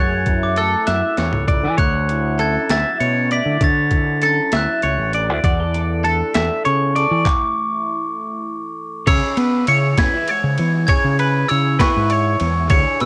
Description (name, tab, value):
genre	math rock and midwest emo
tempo	66 BPM (dotted quarters)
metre	6/8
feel	straight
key	unclear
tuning	A4 = 440 Hz
part	glockenspiel with hard plastic mallets	melody	0.0-13.1 s	C#6 to B6	-24 LUFS	equal	cassette tape
part	electric guitar through a small old amp	accompaniment	0.0-13.1 s	F#2 to A4	-29 LUFS	equal	phaser, cassette tape
part	twelve-string electric guitar	arpeggios	0.0-13.1 s	A4 to E5	-24 LUFS	equal	cassette tape
part	growling fingered electric bass	bass	0.0-13.1 s	A1 to B3	-22 LUFS	equal	overdrive
part	boom bap sampler-style drum kit	drums	0.3-13.1 s	crash cymbal, handclaps, hi-hat, kick drum, ride cymbal, snare drum, toms	-23 LUFS	equal	cassette tape
room	light reverb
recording	home recording on cassette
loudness	-18 LUFS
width	mono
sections	0.0-9.1 A section; 9.1-13.1 B section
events	drum fill 0.9-1.8; stop 7.3-9.1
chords	0.0 F#m9; 1.8 Dmaj9; 5.4 E7sus4; 9.1 C#m7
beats	0.89 | 1.80 2.71 | 3.62 4.53 | 5.44 6.35 | 7.26 8.17 | 9.08 9.99 | 10.89 11.80 | 12.71